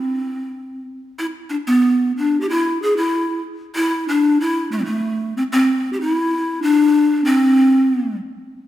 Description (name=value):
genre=andean folk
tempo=94 BPM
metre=2/4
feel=straight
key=unclear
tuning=A4 = 440 Hz
part: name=breathy mellow large pan pipes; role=solo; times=0.0-8.2 s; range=A3 to G#4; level=-16 LUFS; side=equal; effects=none
room=wet recital hall reverb, RT60 1.9 s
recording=minimal, uncompressed stereo recording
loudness=-15 LUFS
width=side -13 dB against mid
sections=0.0-6.3 A section; 6.3-8.7 B section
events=none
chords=none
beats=0.55 | 1.20 1.84 | 2.48 3.12 | 3.76 4.40 | 5.03 5.67 | 6.31 6.94 | 7.57